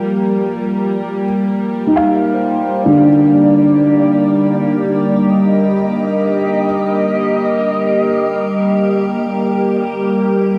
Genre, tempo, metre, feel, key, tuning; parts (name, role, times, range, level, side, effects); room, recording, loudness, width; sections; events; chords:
ambient; free time; Eb major; A4 = 440 Hz
warm velvety synth lead; melody; 0.0-10.4 s; Bb4 to Eb5; -23 LUFS; equal; chorus, cassette tape, analog delay
evolving wavetable pad; sustained chords; 0.0-10.6 s; G3 to Bb4; -18 LUFS; equal; chorus, built-in reverb, phaser, cassette tape
felt-muted upright piano; arpeggios; 0.0-10.6 s; D3 to F5; -18 LUFS; equal; cassette tape, analog delay
bowed-like drone; drone; 0.0-10.6 s; G3; -25 LUFS; equal; built-in reverb, cassette tape
wet lush hall reverb, RT60 2.5 s; home recording on cassette; -14 LUFS; mono
0.0-10.6 A section
fade-in on soft synth lead 0.0-10.6
0.0 Ebmaj7